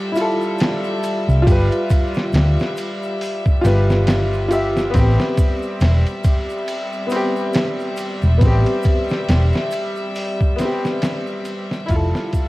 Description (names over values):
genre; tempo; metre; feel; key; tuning
trip hop; 69 BPM; 4/4; swing 57% on 16ths; A minor; A4 = 440 Hz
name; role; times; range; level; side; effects
bright upright piano; accompaniment; 0.0-12.5 s; B3 to E5; -22 LUFS; left 1 dB; harmonic tremolo
rich chamber string section; sustained chords; 0.0-12.5 s; G3 to E5; -25 LUFS; left 1 dB; none
trip hop sampler-style drum kit; drums; 0.2-12.5 s; hi-hat, kick drum, ride cymbal, snare drum; -21 LUFS; equal; vintage 12-bit sampler grit, small room reverb
egg shaker; percussion; 0.2-12.5 s; none; -48 LUFS; right 1 dB; none
hollow-body short-scale fingered electric bass; bass; 1.3-12.1 s; E1 to D2; -16 LUFS; equal; tube saturation
room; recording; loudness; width
light reverb, small room ambience; worn, warbling old tape, cassette tape, vinyl crackle, warbly pitch drift; -16 LUFS; side -19 dB against mid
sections
0.0-12.5 A section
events
fade-out 9.6-12.5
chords
0.0 Fmaj7; 1.5 G7; 4.9 Am9 (rootless); 11.9 Fmaj7